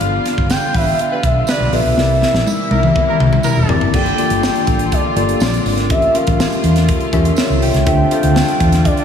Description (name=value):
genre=polished 1980s jazz-funk pop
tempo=122 BPM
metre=4/4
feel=straight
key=unclear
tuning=A4 = 438 Hz
part: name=expressive portamento lead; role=melody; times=0.0-9.0 s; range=D5 to G5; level=-20 LUFS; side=equal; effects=chorus, diffuse ambient delay
part: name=tine electric piano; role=accompaniment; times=0.0-9.0 s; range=Bb3 to G5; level=-19 LUFS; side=left 3 dB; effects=overdrive, lush chorus
part: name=rich studio string section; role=sustained chords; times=0.0-9.0 s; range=C3 to A4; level=-24 LUFS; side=equal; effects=none
part: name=vintage muted fingered electric bass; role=bass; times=0.0-8.9 s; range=E1 to E2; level=-16 LUFS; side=equal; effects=none
part: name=crisp fusion drum kit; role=drums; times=0.0-9.0 s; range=crash cymbal, hi-hat, kick drum, snare drum, toms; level=-18 LUFS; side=left 1 dB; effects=none
part: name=tambourine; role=percussion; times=0.5-8.5 s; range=none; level=-35 LUFS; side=right 6 dB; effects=none
part: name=warm horn section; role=second line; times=0.7-3.8 s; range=G3 to B4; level=-25 LUFS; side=right 3 dB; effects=none
room=moderate lush hall reverb, RT60 2.2 s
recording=dreamy mix soaked in reverb, studio reverb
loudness=-12 LUFS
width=side -8 dB against mid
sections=0.0-3.9 A section; 3.9-9.0 B section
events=drum fill 2.0-3.9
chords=0.0 G7; 2.0 C7; 3.9 Gm9; 5.4 Bb9; 5.9 A7b9b13; 7.9 Dm9